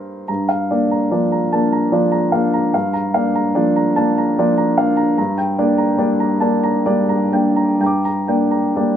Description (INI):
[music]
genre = neoclassical minimalist piano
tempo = 63-74 BPM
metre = 3/4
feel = rubato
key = unclear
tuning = A4 = 440 Hz
[part]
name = warm upright piano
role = solo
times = 0.0-9.0 s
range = G2 to D6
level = -15 LUFS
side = equal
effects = none
[sound]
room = light reverb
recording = nothing above 10.6 kHz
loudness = -15 LUFS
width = side -9 dB against mid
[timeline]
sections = 0.3-9.0 A section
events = none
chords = 0.3 Bb/G; 5.2 Gm